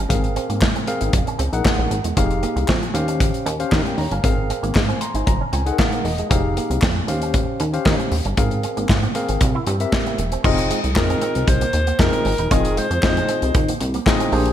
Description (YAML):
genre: early-eighties boogie funk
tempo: 116 BPM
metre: 4/4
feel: straight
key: F minor from 10.4 s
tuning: A4 = 441 Hz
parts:
  - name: electric guitar with an envelope filter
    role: riff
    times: 0.0-14.4 s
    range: Ab3 to F4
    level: -30 LUFS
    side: right 6 dB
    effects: wide subtle chorus, slapback echo
  - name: plucky analog bass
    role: bass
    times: 0.0-14.5 s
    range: E1 to Eb3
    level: -22 LUFS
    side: equal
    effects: none
  - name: tine electric piano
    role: accompaniment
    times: 0.1-14.5 s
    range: Bb3 to C6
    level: -24 LUFS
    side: left 3 dB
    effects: auto-pan, slapback echo
  - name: modern studio drum kit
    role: drums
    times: 0.1-14.5 s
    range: crash cymbal, hi-hat, kick drum, snare drum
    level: -20 LUFS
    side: equal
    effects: none
  - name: group handclap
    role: percussion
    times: 0.6-14.2 s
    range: none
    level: -32 LUFS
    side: left 2 dB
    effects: none
  - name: breathy alto saxophone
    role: melody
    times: 11.0-13.8 s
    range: Ab4 to C5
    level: -24 LUFS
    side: equal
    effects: slapback echo
room: moderate recital hall reverb, RT60 1.4 s, studio reverb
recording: big arena sound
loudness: -17 LUFS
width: side -10 dB against mid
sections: 0.0-10.4 A section; 10.4-14.5 B section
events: tine electric piano fill 4.8-6.3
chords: 0.1 Ab69; 1.1 Gb69; 2.2 Fm9; 2.9 Eb13; 4.2 Ab69; 5.3 Gb69; 6.3 Fm9; 7.1 Eb13; 8.4 Ab69; 9.4 C7; 10.4 Fm7